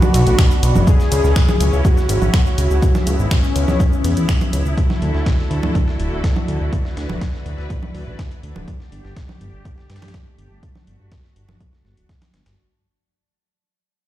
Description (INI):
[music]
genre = melodic techno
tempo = 123 BPM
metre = 4/4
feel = straight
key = unclear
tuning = A4 = 441 Hz
[part]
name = analog synth brass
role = melody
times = 0.0-4.7 s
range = C#4 to G#4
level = -23 LUFS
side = left 1 dB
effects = chorus, sidechain pumping, tape echo
[part]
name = rich symphonic string section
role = sustained chords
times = 0.0-12.6 s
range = D3 to B4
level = -29 LUFS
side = right 1 dB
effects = sidechain pumping
[part]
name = deep house drum kit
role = drums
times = 0.0-12.3 s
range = congas, finger snaps, hi-hat, shaker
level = -23 LUFS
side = right 2 dB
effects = sidechain pumping on hats, sidechain pumping on perc
[part]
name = warbly tape-like pad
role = texture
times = 0.0-12.6 s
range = G3 to B5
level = -32 LUFS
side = right 1 dB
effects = chorus, built-in reverb, sidechain pumping
[part]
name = fat analog bass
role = bass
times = 0.1-12.6 s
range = D1 to G2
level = -18 LUFS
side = equal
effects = sidechain pumping
[part]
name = dusty soul sampler-style drum kit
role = drums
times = 0.1-12.6 s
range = hi-hat, snare drum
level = -35 LUFS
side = left 1 dB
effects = high-pass filter on hats, high-pass filter on snare
[part]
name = electronic kick drum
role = drums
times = 0.4-12.2 s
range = none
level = -18 LUFS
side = equal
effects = none
[sound]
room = little or no reverb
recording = played on a big sound system in a bare room, stone room reverb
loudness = -15 LUFS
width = side -13 dB against mid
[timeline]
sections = 0.0-12.6 A section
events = fade-out on ambient pad 0.0-12.6; fade-out 0.0-12.6; filter sweep on analog synth bass 0.0-12.6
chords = 0.0 Bm; 0.9 C#m; 4.8 Dadd9; 8.7 Gsus2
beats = 0.39 | 0.87 1.36 1.85 2.34 | 2.82 3.31 3.80 4.29 | 4.78 5.26 5.75 6.24 | 6.73 7.21 7.70 8.19 | 8.68 9.16 9.65 10.14 | 10.63 11.12 11.60 12.09